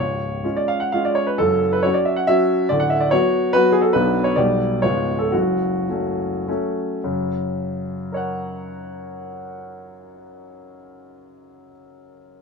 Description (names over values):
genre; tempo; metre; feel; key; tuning
classical, romantic triple-time dance for piano with dotted rhythms; 101-151 BPM; 3/4; rubato; unclear; A4 = 440 Hz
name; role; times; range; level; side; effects
clear baby grand piano; solo; 0.0-12.4 s; C#1 to F#5; -18 LUFS; equal; none
room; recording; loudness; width
moderate large studio reverb, RT60 1.2 s; none; -18 LUFS; side -5 dB against mid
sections
0.0-7.0 A section; 7.0-10.2 B section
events
slowing down 3.3-7.0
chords
0.0 C#; 1.4 F#5; 2.7 Bm/D; 3.9 Bm; 4.4 G/B; 4.8 C#7; 5.3 F#m; 7.0 F#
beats
0.44 0.93 | 1.39 1.85 2.28 | 2.69 3.12 3.54 | 3.94 4.36 4.83 | 5.33 5.89 6.47 | 7.04 7.58 8.13 | 8.65 9.18 9.72